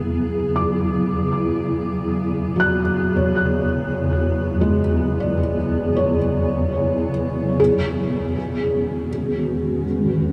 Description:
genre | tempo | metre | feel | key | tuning
ambient | free time | none | none | unclear | A4 = 440 Hz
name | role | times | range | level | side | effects
granular cloud pad | sustained chords | 0.0-10.3 s | E2 to B4 | -22 LUFS | equal | built-in reverb, shimmer reverb
felt-muted upright piano | arpeggios | 0.6-10.3 s | F#3 to F#6 | -25 LUFS | equal | diffuse ambient delay, shimmer reverb
room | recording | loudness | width
wet huge ambient reverb, RT60 7.3 s | none | -21 LUFS | mono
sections
0.0-7.6 A section; 7.6-10.3 B section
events
filter sweep on ambient pad 7.6-10.3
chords
0.0 D69/E; 7.6 Emaj9

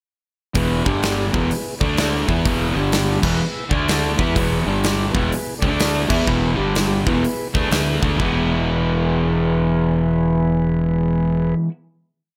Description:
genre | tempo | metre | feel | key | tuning
blues rock power trio and southern rock | 125 BPM | 4/4 | swing 64% on 8ths | E mixolydian | A4 = 440 Hz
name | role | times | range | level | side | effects
mellow tonewheel organ | sustained chords | 0.5-11.6 s | G3 to B5 | -30 LUFS | equal | slow rotary speaker
overdriven semi-hollow guitar | riff | 0.5-11.7 s | E2 to E4 | -22 LUFS | equal | none
huge arena drum kit | drums | 0.5-8.3 s | crash cymbal, hi-hat, kick drum, snare drum | -25 LUFS | equal | none
fuzz fingered electric bass | bass | 0.6-11.5 s | E1 to E2 | -27 LUFS | equal | overdrive
room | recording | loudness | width
light reverb | none | -19 LUFS | mono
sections
0.5-8.2 riff; 8.2-12.0 final chord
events
tonewheel organ fill 2.9-4.4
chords
0.5 E; 0.8 G5; 1.3 E; 1.7 D5; 2.2 E; 2.7 G5; 3.2 E; 3.6 D5; 4.1 E; 4.6 G5; 5.1 E; 5.5 D5; 6.0 E; 6.5 G5; 7.0 E

